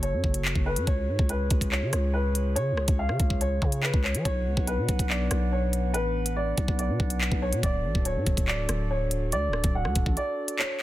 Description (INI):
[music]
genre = hip hop, drill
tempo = 142 BPM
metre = 4/4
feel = half-time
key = unclear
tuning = A4 = 435 Hz
[part]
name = dark upright piano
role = melody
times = 0.0-10.8 s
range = B4 to F#5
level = -31 LUFS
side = equal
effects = low-pass filter
[part]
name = glass harmonica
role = sustained chords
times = 0.0-10.8 s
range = B3 to F#5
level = -37 LUFS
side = equal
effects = none
[part]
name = growling 808-style bass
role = bass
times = 0.0-10.2 s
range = D1 to E#3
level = -27 LUFS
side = equal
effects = none
[part]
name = drill drum kit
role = drums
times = 0.0-10.8 s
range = handclaps, hi-hat, kick drum, rim click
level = -27 LUFS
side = equal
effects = none
[sound]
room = digital ambience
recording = dense, heavily limited modern master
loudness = -24 LUFS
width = side -15 dB against mid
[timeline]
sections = 0.0-10.8 A section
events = break 10.2-10.8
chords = 0.0 F#m; 0.9 C#; 4.3 Bm; 7.6 D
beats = 0.03 0.45 | 0.87 1.29 1.72 2.14 | 2.56 2.98 3.41 3.83 | 4.25 4.67 5.10 5.52 | 5.94 6.37 6.79 7.21 | 7.63 8.05 8.48 8.90 | 9.32 9.74 10.17 10.59